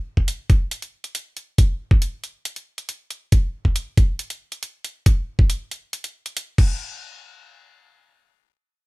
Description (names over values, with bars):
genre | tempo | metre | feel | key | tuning
heavy wobble dubstep | 138 BPM | 4/4 | half-time | none | none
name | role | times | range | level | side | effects
electronic kick drum | drums | 0.2-6.7 s | none | -15 LUFS | equal | none
dubstep drum kit | drums | 0.3-6.7 s | crash cymbal, hi-hat | -29 LUFS | equal | none
room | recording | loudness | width
little or no reverb | none | -20 LUFS | side -23 dB against mid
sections
0.0-6.8 A section; 6.8-8.9 B section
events
none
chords
none